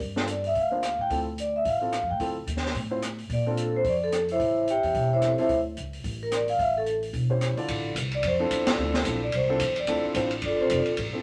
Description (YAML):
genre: jazz, small-group swing and bop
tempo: 219 BPM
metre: 4/4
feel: swing 59% on 8ths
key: D minor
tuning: A4 = 440 Hz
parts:
  - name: upright bass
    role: bass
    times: 0.0-11.2 s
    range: E1 to Bb2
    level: -34 LUFS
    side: equal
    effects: none
  - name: open jazz drum kit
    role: drums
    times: 0.0-11.0 s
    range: hi-hat, kick drum, ride cymbal, rim click, snare drum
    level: -35 LUFS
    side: equal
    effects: none
  - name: warm grand piano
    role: accompaniment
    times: 0.2-11.2 s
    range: D3 to D5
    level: -33 LUFS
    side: equal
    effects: none
  - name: vibraphone with medium mallets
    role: melody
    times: 0.3-10.9 s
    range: B#3 to G5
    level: -28 LUFS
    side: equal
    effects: none
room: moderate studio reverb, RT60 0.7 s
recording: none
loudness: -26 LUFS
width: mono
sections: 0.0-7.7 A section; 7.7-11.2 A section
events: band accent 8.6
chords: 0.0 Gm7; 1.1 Dm7; 3.3 Bbmaj7; 4.4 A7#9; 5.5 D5; 6.6 A7#9; 7.7 Dm7